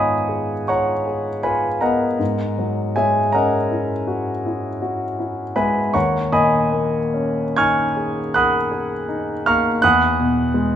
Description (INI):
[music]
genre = classical, impressionist solo piano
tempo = 66-86 BPM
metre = 5/4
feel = rubato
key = unclear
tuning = A4 = 438 Hz
[part]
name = clear concert grand piano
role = solo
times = 0.0-10.8 s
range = D#2 to G#6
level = -17 LUFS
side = equal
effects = none
[sound]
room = wet recital hall reverb, RT60 1.7 s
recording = recorded in a church or concert hall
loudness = -17 LUFS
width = side -9 dB against mid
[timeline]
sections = 0.0-10.8 A section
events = none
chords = 0.0 G#m6; 2.2 F#9/G#; 5.9 D#7sus4; 9.8 Emaj9